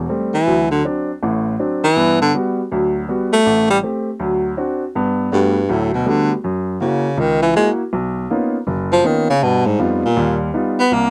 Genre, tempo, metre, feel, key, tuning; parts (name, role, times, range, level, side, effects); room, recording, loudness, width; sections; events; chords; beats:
jazz; 161 BPM; 4/4; swing 64% on 8ths; G major; A4 = 443 Hz
clear upright piano; accompaniment; 0.0-11.1 s; F#1 to G4; -21 LUFS; equal
breathy baritone saxophone; melody; 0.3-11.1 s; F2 to B3; -17 LUFS; equal
light reverb; dry, close 1970s-style studio recording; -18 LUFS; mono
0.0-4.9 A section; 4.9-11.1 B section
0.5 D7; 2.0 Gmaj7; 3.5 Am7; 4.2 D7; 4.9 Gmaj9; 6.4 F#7; 7.9 Bmaj9#11; 9.4 G7alt
0.10 | 0.47 0.84 1.22 1.59 | 1.96 2.34 2.71 3.08 | 3.46 3.83 4.20 4.57 | 4.95 5.32 5.69 6.06 | 6.44 6.81 7.18 7.55 | 7.92 8.30 8.67 9.04 | 9.41 9.79 10.16 10.53 | 10.90